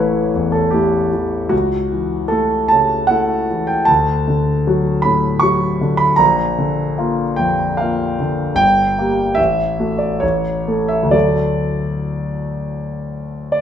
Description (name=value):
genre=classical, romantic nocturne for solo piano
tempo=60-79 BPM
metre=3/4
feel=rubato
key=D major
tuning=A4 = 440 Hz
part: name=warm concert grand piano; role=solo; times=0.0-13.6 s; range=G1 to C#6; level=-14 LUFS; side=equal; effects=none
room=moderate recital hall reverb, RT60 1.2 s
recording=minimal, uncompressed stereo recording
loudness=-14 LUFS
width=side -9 dB against mid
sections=0.0-13.6 A section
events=none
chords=0.0 A; 1.5 A/C#; 3.9 D; 6.2 Bb; 8.6 Gm; 9.4 Dadd9/A; 10.2 N.C.; 11.1 D